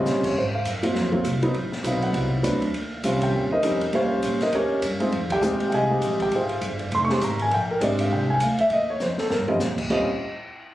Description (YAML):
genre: jazz piano trio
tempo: 201 BPM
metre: 4/4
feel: swing 60% on 8ths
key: Eb mixolydian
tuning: A4 = 440 Hz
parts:
  - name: warm concert grand piano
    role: melody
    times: 0.0-10.1 s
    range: Gb3 to Db6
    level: -22 LUFS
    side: equal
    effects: none
  - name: upright bass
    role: bass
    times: 0.0-10.1 s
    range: F1 to Bb2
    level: -28 LUFS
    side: equal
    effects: none
  - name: open jazz drum kit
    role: drums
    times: 0.1-10.0 s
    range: china cymbal, crash cymbal, hi-hat, kick drum, ride cymbal, snare drum, toms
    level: -31 LUFS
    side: equal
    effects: none
room: light reverb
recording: recorded on a phone in the room, club reverb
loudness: -21 LUFS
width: side -14 dB against mid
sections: 0.0-9.9 A section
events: band accent 5.3; drum fill 9.0-9.6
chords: 0.4 Ab13; 1.5 Adim7; 2.7 Eb13; 5.1 Fm7; 7.5 Bb13; 8.7 Eb69; 9.9 N.C.